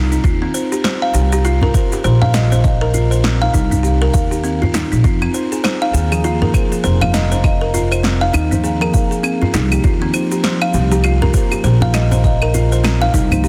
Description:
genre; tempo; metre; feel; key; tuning
organic downtempo; 100 BPM; 4/4; swing 59% on 16ths; unclear; A4 = 440 Hz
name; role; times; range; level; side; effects
buzzing kalimba; arpeggios; 0.0-13.5 s; C4 to F5; -21 LUFS; equal; low-pass filter, digital delay
upright bass; bass; 0.0-13.5 s; F1 to F2; -18 LUFS; equal; sidechain pumping
electronic cabasa, snare drum and claves; drums; 0.1-13.5 s; none; -25 LUFS; equal; overdrive
electronic kick drum; drums; 0.2-13.3 s; none; -18 LUFS; equal; overdrive
djembe; percussion; 1.1-13.4 s; none; -26 LUFS; equal; none
muted felt-like synth keys; accompaniment; 6.1-13.5 s; F3 to C5; -24 LUFS; equal; chorus, sidechain pumping, digital delay
room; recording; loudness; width
light reverb, small room reverb; dense, heavily limited modern master; -15 LUFS; mono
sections
0.0-13.5 A section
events
none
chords
0.2 Eb; 5.0 Fm7; 9.8 Eb

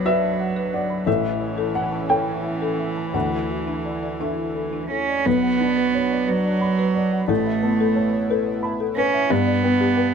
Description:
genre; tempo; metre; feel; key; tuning
neoclassical piano and strings; 58 BPM (dotted quarters); 6/8; uneven beats, rubato; B minor; A4 = 444 Hz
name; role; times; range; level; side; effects
warm cello; second line; 0.0-10.1 s; E3 to C#4; -22 LUFS; right 4 dB; none
dark upright piano; accompaniment; 0.0-10.1 s; A1 to D6; -24 LUFS; left 3 dB; none
chorused pulse-width pad; sustained chords; 0.0-10.1 s; D3 to B4; -31 LUFS; equal; none
folk marimba with medium mallets; arpeggios; 0.1-10.1 s; D4 to B5; -28 LUFS; left 5 dB; slapback echo
room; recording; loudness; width
light reverb; close, detailed microphones; -19 LUFS; side -6 dB against mid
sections
0.0-5.3 A section; 5.3-10.1 B section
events
none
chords
0.0 Bm; 1.1 A; 3.1 Dadd9; 5.3 Bmadd9; 7.3 Aadd9; 9.3 G

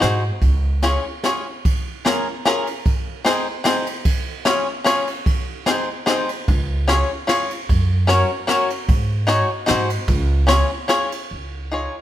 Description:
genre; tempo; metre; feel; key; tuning
musette waltz; 149 BPM; 3/4; swing 53% on 8ths; Db major; A4 = 439 Hz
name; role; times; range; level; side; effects
bluegrass banjo; accompaniment; 0.0-12.0 s; C4 to Db5; -20 LUFS; left 2 dB; none
upright bass; bass; 0.0-0.9, 6.5-11.9 s; Db2 to Ab2; -19 LUFS; right 1 dB; none
jazz brush drum kit; drums; 0.0-11.2 s; kick drum, ride cymbal, snare drum; -22 LUFS; equal; none
room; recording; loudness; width
light reverb; none; -17 LUFS; side -12 dB against mid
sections
0.0-1.7 A section; 1.7-11.3 A section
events
none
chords
0.0 Ab7; 0.4 Db; 1.7 Db6; 2.9 Ab; 4.1 Db; 5.3 Ab; 6.5 Db; 7.7 Gb; 8.9 Ab7sus4; 9.7 Ab7; 10.1 Db; 11.3 Dbadd9

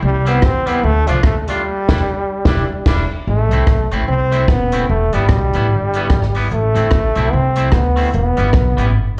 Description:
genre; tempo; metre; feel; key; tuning
ska; 148 BPM; 4/4; swing 60% on 8ths; A minor; A4 = 440 Hz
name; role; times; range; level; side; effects
brilliant trombone; melody; 0.0-8.9 s; F3 to C4; -21 LUFS; equal; slapback echo
upright bass; bass; 0.0-9.2 s; D#1 to E2; -19 LUFS; equal; tube saturation
clean electric guitar; accompaniment; 0.3-8.9 s; G3 to F4; -26 LUFS; equal; slapback echo
compact cocktail drum kit; drums; 0.3-9.2 s; crash cymbal, hi-hat, kick drum, rim click, snare drum; -18 LUFS; equal; none
room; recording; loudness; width
small room ambience; live gig heard through the venue's PA, cassette tape, club reverb; -16 LUFS; mono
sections
0.0-3.3 A section; 3.3-9.2 B section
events
band accent 1.6-3.3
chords
0.0 C; 0.8 Dm; 1.6 Em7; 3.3 Am; 4.9 Em; 6.5 Am; 8.1 Em

